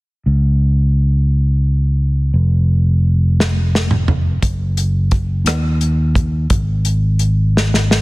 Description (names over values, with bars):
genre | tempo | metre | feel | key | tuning
slow gospel | 58 BPM (dotted quarters) | 6/8 | straight | Db major | A4 = 440 Hz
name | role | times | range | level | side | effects
fingered electric bass | bass | 0.3-8.0 s | F1 to Eb2 | -14 LUFS | equal | none
warm soul drum kit | drums | 3.4-8.0 s | hi-hat, kick drum, rim click, snare drum, toms | -17 LUFS | equal | none
room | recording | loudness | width
little or no reverb | dense, heavily limited modern master | -13 LUFS | side -22 dB against mid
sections
0.3-8.0 A section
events
drum fill 3.4-4.4, 7.5-8.0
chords
none